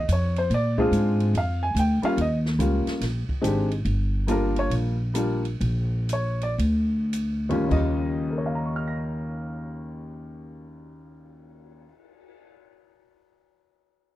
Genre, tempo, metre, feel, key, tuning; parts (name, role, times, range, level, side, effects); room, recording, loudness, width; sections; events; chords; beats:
jazz piano trio; 100-143 BPM; 4/4; swing 65% on 8ths; Eb mixolydian; A4 = 440 Hz
warm baby grand piano; melody; 0.0-13.0 s; Eb2 to Bb6; -26 LUFS; left 1 dB
upright bass; bass; 0.0-11.8 s; G1 to Bb2; -25 LUFS; equal
open jazz drum kit; drums; 0.1-12.4 s; crash cymbal, cymbal swell, hi-hat, kick drum, ride cymbal, snare drum; -37 LUFS; right 1 dB
little or no reverb; dry, close 1970s-style studio recording; -22 LUFS; side -15 dB against mid
0.0-3.9 A section; 3.9-7.7 B section; 7.7-12.5 C section
slowing down 3.9-7.7
0.5 Bb9; 2.2 Eb9; 3.0 Bb9; 3.9 Gm7; 5.6 Bb; 7.7 Eb9
0.08 | 0.50 0.92 1.34 1.76 | 2.18 2.60 3.02 3.44 | 3.86 4.28 4.71 5.15 | 5.61 6.08 6.59 7.12 | 7.70 8.30 8.90 9.50 | 10.11 10.71 11.31 11.91